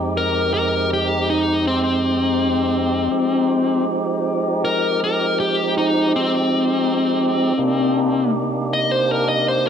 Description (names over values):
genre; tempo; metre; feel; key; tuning
blues; 54 BPM (dotted quarters); 12/8; straight; unclear; A4 = 440 Hz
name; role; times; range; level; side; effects
tonewheel organ; sustained chords; 0.0-9.7 s; F2 to G4; -21 LUFS; right 2 dB; slow rotary speaker
dark smooth lead guitar; melody; 0.2-9.7 s; C4 to Eb5; -19 LUFS; left 2 dB; overdrive
room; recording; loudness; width
wet plate reverb, RT60 2.9 s; dreamy mix soaked in reverb; -17 LUFS; side -8 dB against mid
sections
0.0-9.7 A section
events
none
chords
0.0 Fm9; 7.6 Cm9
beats
0.89 2.01 | 3.12 4.24 5.35 6.47 | 7.58 8.69